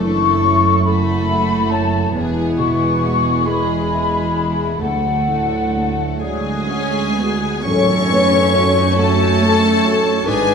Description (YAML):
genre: cinematic, emotional film score for orchestra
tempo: 41-47 BPM (dotted quarters)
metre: 6/8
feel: rubato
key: unclear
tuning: A4 = 440 Hz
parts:
  - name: warm symphonic violin section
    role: melody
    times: 0.0-10.5 s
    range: G#4 to C#6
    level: -25 LUFS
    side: left 4 dB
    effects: none
  - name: small flute group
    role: second line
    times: 0.0-10.5 s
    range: G#4 to C#6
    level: -20 LUFS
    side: left 5 dB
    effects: none
  - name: warm studio violin section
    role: second line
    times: 0.0-10.5 s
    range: D4 to C#5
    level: -25 LUFS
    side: left 4 dB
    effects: none
  - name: rich studio viola section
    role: accompaniment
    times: 0.0-10.5 s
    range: F#3 to D4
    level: -24 LUFS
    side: right 3 dB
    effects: none
  - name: warm concert grand piano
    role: accompaniment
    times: 0.0-10.5 s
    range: D2 to F#5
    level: -22 LUFS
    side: equal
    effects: none
  - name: dark French horn section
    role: sustained chords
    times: 0.0-10.5 s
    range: D3 to B4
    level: -25 LUFS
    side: left 2 dB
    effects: none
  - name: dark studio cello section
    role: bass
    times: 0.0-10.5 s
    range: D2 to C#4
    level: -24 LUFS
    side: right 2 dB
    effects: none
  - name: dark studio double bass section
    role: bass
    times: 0.0-10.5 s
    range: E1 to F#2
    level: -23 LUFS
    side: right 5 dB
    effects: none
  - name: cymbal swell and tam-tam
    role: percussion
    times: 4.8-10.5 s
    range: none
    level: -29 LUFS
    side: left 1 dB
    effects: none
  - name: clear oboe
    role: second line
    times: 7.6-10.5 s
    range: C#5 to D5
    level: -26 LUFS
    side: right 2 dB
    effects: none
  - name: warm clarinet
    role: second line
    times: 7.6-10.5 s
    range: A4 to B4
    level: -25 LUFS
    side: left 2 dB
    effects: none
room: wet scoring stage reverb, RT60 1.4 s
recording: none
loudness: -14 LUFS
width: side -6 dB against mid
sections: 0.0-7.6 A section; 7.6-10.5 B section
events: band accent 7.6-8.5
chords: 0.0 F#m7; 2.1 E; 4.8 D; 7.6 F#m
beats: 0.86 | 2.15 3.46 | 4.82 6.21 | 7.65 8.96 | 10.27